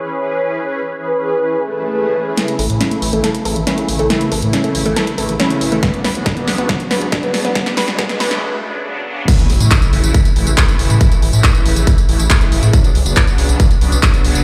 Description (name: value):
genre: uplifting trance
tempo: 139 BPM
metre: 4/4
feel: straight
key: A major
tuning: A4 = 436 Hz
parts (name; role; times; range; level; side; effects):
- warm velvety synth lead; second line; 0.0-2.3 s; B4 to C#5; -23 LUFS; equal; chorus, delay
- filtered supersaw swell; sustained chords; 0.0-14.4 s; C#3 to B4; -23 LUFS; equal; phaser, sidechain pumping
- swell, riser and impact; sound effects; 1.6-11.0 s; none; -28 LUFS; equal; none
- analog pluck; arpeggios; 2.4-8.2 s; A3 to B4; -22 LUFS; equal; chorus, sidechain pumping, delay
- punchy analog drum machine; drums; 2.4-14.4 s; crash cymbal, handclaps, hi-hat, snare drum, tambourine; -22 LUFS; equal; overdrive
- gritty driven synth bass; bass; 2.6-14.4 s; F#1 to A2; -19 LUFS; equal; sidechain pumping
- electronic kick drum; drums; 5.8-14.1 s; none; -16 LUFS; equal; none
room: light reverb, digital ambience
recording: played on a big sound system in a bare room, large studio reverb, high-pass filter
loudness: -15 LUFS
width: mono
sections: 0.0-2.4 A section; 2.4-9.3 B section; 9.3-14.4 C section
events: swell 1.6-2.4; build-up 2.4-9.3; drum fill 2.4-8.4; filter sweep on synth pluck 2.4-9.3; filter sweep 2.4-9.3; break 8.4-9.3; drop 9.3-14.4; impact 9.3-11.0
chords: 0.0 C#m7; 2.4 A; 5.8 Bmadd9; 9.3 A; 12.7 Bmadd9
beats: 0.22 | 0.65 1.08 1.51 1.94 | 2.38 2.81 3.24 3.67 | 4.10 4.53 4.96 5.40 | 5.83 6.26 6.69 7.12 | 7.55 7.99 8.42 8.85 | 9.28 9.71 10.14 10.58 | 11.01 11.44 11.87 12.30 | 12.73 13.17 13.60 14.03